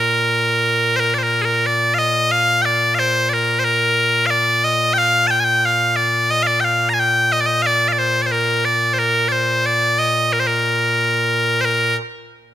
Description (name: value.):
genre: scottish traditional.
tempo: 90 BPM.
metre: 4/4.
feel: straight.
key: Bb major.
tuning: A4 = 438 Hz.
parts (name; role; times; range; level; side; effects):
loud bright bagpipes; solo; 0.0-12.0 s; Bb2 to Bb5; -15 LUFS; equal; none.
room: light reverb.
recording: close, detailed microphones.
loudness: -15 LUFS.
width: side -12 dB against mid.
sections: 0.0-11.7 A section.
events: none.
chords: none.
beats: 0.33 | 1.00 1.67 2.33 3.00 | 3.67 4.33 5.00 5.67 | 6.33 7.00 7.67 8.33 | 9.00 9.66 10.33 11.00 | 11.66.